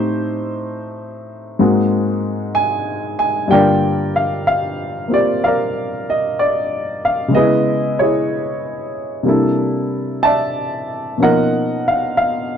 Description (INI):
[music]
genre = jazz ballad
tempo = 63 BPM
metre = 4/4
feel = swing 68% on 8ths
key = unclear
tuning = A4 = 439 Hz
[part]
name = warm baby grand piano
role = solo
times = 0.0-12.6 s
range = G2 to A5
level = -15 LUFS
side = equal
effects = none
[sound]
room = small room ambience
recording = dry, close 1970s-style studio recording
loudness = -15 LUFS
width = side -8 dB against mid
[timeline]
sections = 0.0-12.6 A section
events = none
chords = 0.0 Am7b5; 1.6 Ab9; 3.5 Gm7; 7.3 Dbm9; 9.2 C13; 11.2 Bmaj9#11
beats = 0.64 1.59 2.54 | 3.50 4.46 5.41 6.37 | 7.33 8.28 9.24 10.21 | 11.18 12.14